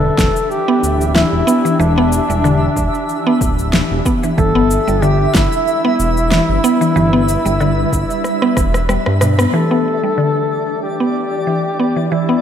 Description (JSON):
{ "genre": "organic downtempo", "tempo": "93 BPM", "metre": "4/4", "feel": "swing 54% on 16ths", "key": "E minor pentatonic", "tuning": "A4 = 440 Hz", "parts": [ { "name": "warm duduk", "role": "melody", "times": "0.0-12.4 s", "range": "D4 to A4", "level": "-19 LUFS", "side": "left 1 dB", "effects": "ping-pong delay" }, { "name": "granular cloud pad", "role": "sustained chords", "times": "0.0-12.4 s", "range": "E3 to E5", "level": "-22 LUFS", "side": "left 1 dB", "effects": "built-in reverb, sidechain pumping" }, { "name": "mallet-like synth pluck", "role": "arpeggios", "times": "0.0-12.4 s", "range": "B2 to B3", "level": "-17 LUFS", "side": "equal", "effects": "chorus" }, { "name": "smooth synth bass", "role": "bass", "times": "0.0-9.5 s", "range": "D1 to G2", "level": "-18 LUFS", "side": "equal", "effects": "none" }, { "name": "twinkling granular texture", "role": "texture", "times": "0.3-12.4 s", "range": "D5 to E5", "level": "-25 LUFS", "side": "right 4 dB", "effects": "built-in reverb" }, { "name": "electronic kick drum", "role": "drums", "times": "0.2-8.7 s", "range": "none", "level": "-19 LUFS", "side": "equal", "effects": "overdrive, studio ambience" }, { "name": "electronic snare drum, cabasa and rim click", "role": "drums", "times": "0.2-9.5 s", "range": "none", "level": "-20 LUFS", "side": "equal", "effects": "overdrive, studio ambience" }, { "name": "mellow tine electric piano", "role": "accompaniment", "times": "9.5-12.4 s", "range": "E3 to G4", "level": "-27 LUFS", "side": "left 3 dB", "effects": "medium stereo tremolo, sidechain pumping, low-pass filter" } ], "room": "moderate lush hall reverb, RT60 2.2 s", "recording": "rough home demo mix", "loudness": "-12 LUFS", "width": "side -9 dB against mid", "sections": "0.0-9.5 A section; 9.5-12.4 B section", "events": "drum fill 8.2-9.5; kick drops out 8.9-9.5; band accent 9.4-9.7; filter sweep on ambient pad 9.5-12.4", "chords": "0.0 Em7; 4.4 G6; 9.5 Em7" }